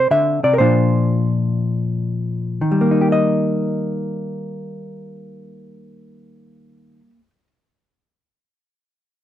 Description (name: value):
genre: solo jazz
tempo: free time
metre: none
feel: none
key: Eb major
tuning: A4 = 440 Hz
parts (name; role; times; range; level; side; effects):
- hollow-body jazz guitar; solo; 0.0-7.5 s; Bb2 to E5; -17 LUFS; left 1 dB; none
room: light reverb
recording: minimal, uncompressed stereo recording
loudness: -16 LUFS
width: side -11 dB against mid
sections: 0.0-2.6 A section; 2.6-6.9 B section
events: slowing down 0.0-2.6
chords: 0.0 C; 0.6 Bbadd9; 2.6 Eb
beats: free time